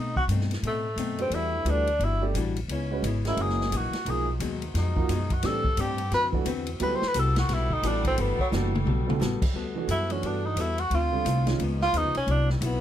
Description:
jazz, big band swing; 175 BPM; 4/4; swing 62% on 8ths; G major; A4 = 440 Hz
warm tenor saxophone; melody; 0.0-12.8 s; F#3 to C5; -28 LUFS; equal
archtop guitar, miked and amplified; accompaniment; 0.0-12.8 s; F#2 to B4; -34 LUFS; left 6 dB
upright bass; bass; 0.0-12.8 s; F#1 to B2; -28 LUFS; equal
swinging big-band drum kit; drums; 0.2-12.7 s; crash cymbal, hi-hat, kick drum, ride cymbal, snare drum, toms; -32 LUFS; equal
warm grand piano; accompaniment; 1.2-11.6 s; D3 to D5; -32 LUFS; right 7 dB
mellow saxophone section; sustained chords; 4.0-12.8 s; C#3 to A4; -40 LUFS; equal
light reverb; close, detailed microphones; -24 LUFS; side -11 dB against mid
0.0-9.5 A section; 9.5-12.8 A section
tenor saxophone solo 0.0-12.8; drum fill 8.5-9.2
0.0 B7b9; 1.3 Em9; 2.7 C#m7; 3.4 F#13; 4.1 B6; 5.4 Am11; 6.1 D13; 6.8 Gmaj9; 10.9 Dm7; 11.6 C#9; 12.3 Cmaj9#11

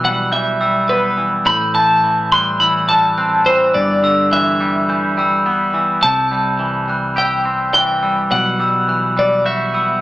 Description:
post-rock; 105 BPM; 4/4; straight; A4 = 440 Hz
twelve-string electric guitar; melody; 0.0-10.0 s; B4 to C6; -16 LUFS; equal
glockenspiel with soft plastic mallets; arpeggios; 0.0-10.0 s; E6 to G6; -19 LUFS; right 1 dB
twangy electric guitar; arpeggios; 0.0-10.0 s; G2 to G4; -20 LUFS; left 1 dB; warbly pitch drift
picked electric bass; bass; 0.0-10.0 s; G1 to C2; -27 LUFS; equal
wet studio reverb, RT60 0.8 s; band playing live in one room, small speaker sound; -13 LUFS; side -16 dB against mid
0.0-6.0 A section; 6.0-10.0 B section
0.0 Emadd9/B; 1.5 Am7; 3.7 G6; 6.0 C; 8.3 Emadd9/B

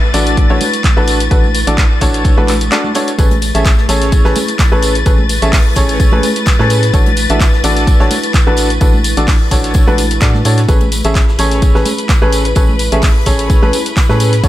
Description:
piano house; 128 BPM; 4/4; swing 54% on 16ths; A major; A4 = 439 Hz
muted studio string section; sustained chords; 0.0-14.5 s; B4 to A6; -21 LUFS; left 5 dB; sidechain pumping
organ-like FM bass; bass; 0.0-14.5 s; A1 to A2; -16 LUFS; equal; sidechain pumping
tambourine and congas; percussion; 0.0-14.5 s; -24 LUFS; right 4 dB
ethereal airy pad; texture; 0.0-14.5 s; A3 to C#6; -26 LUFS; equal; ensemble chorus, built-in reverb, phaser, sidechain pumping
clear upright piano; riff; 0.1-14.5 s; C#4 to E5; -16 LUFS; equal; sidechain pumping, digital delay
punchy analog drum machine; drums; 0.1-14.5 s; handclaps, hi-hat; -20 LUFS; left 1 dB
electronic kick drum; drums; 0.4-14.5 s; -11 LUFS; equal
modern studio drum kit; drums; 3.2-14.5 s; hi-hat, snare drum, tambourine; -29 LUFS; left 2 dB
studio reverb; -9 LUFS; side -14 dB against mid
0.0-14.5 A section
fade-in on ambient pad 0.0-14.5; break 2.7-3.2
0.0 Dmaj7/A; 3.2 Amaj9; 6.9 Dmaj7/A; 10.7 Amaj9

